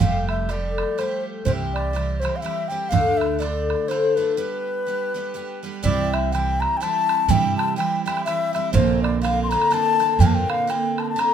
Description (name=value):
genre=celtic folk, Celtic waltz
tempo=124 BPM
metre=3/4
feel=swing 58% on 8ths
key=G mixolydian, C mixolydian from 5.8 s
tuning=A4 = 443 Hz
part: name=baroque flute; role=melody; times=0.0-11.3 s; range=B4 to C6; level=-23 LUFS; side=left 3 dB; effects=none
part: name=picked twelve-string acoustic guitar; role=accompaniment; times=0.0-11.3 s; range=D2 to G4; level=-25 LUFS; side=right 1 dB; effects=none
part: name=upright bass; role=bass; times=0.0-10.4 s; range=F1 to G2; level=-24 LUFS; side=right 1 dB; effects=none
part: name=bodhran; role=percussion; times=0.0-11.3 s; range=none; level=-25 LUFS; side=right 5 dB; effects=none
room=light reverb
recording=minimal, uncompressed stereo recording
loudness=-19 LUFS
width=side -8 dB against mid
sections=0.0-5.8 A section; 5.8-11.3 B section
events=break 4.4-5.8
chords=0.0 Fadd9; 1.5 C; 2.9 Dm; 4.4 G; 5.8 C; 8.8 Bbadd9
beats=| 0.01 0.49 0.98 | 1.47 1.96 2.44 | 2.93 3.42 3.90 | 4.39 4.88 5.36 | 5.84 6.33 6.82 | 7.30 7.78 8.27 | 8.75 9.23 9.72 | 10.20 10.69 11.17